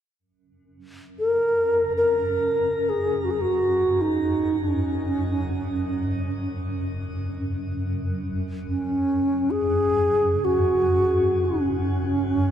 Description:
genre	world meditative, free-time meditation music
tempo	free time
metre	none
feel	none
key	F# major pentatonic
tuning	A4 = 440 Hz
part	granular cloud pad	drone	1.6-12.5 s	F#2	-28 LUFS	equal	built-in reverb
part	low xiao	melody	1.2-12.5 s	C#4 to A#4	-22 LUFS	equal	shimmer reverb, tape echo
room	wet cathedral reverb, RT60 4.3 s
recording	dark, warm production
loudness	-21 LUFS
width	side -10 dB against mid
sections	0.2-12.5 A section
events	none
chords	none

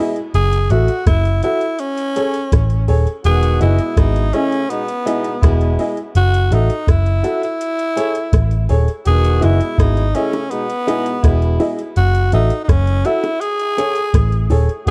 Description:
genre	roots reggae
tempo	83 BPM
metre	4/4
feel	straight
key	E major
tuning	A4 = 438 Hz
part	warm horn section	second line	0.0-14.9 s	B2 to F#4	-26 LUFS	equal	tape echo
part	dark upright piano	stabs	0.0-14.7 s	E4 to E5	-23 LUFS	equal	none
part	soft vintage rhythm box	drums	0.2-14.9 s	hi-hat, kick drum, rim click	-18 LUFS	equal	overdrive
part	raspy tenor saxophone	melody	0.3-14.9 s	B3 to G#4	-23 LUFS	equal	none
part	vintage muted picked electric bass	bass	0.3-14.9 s	D#1 to A1	-17 LUFS	equal	none
part	bongos	percussion	10.3-14.7 s	none	-26 LUFS	equal	none
room	small room reverb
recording	dry, close 1970s-style studio recording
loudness	-16 LUFS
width	mono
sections	0.0-14.9 A section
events	none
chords	0.3 F#m7; 1.8 Amaj7; 3.2 Emaj7; 6.2 F#m7; 7.6 Amaj7; 9.1 Emaj7; 12.0 F#m7; 13.4 Amaj7

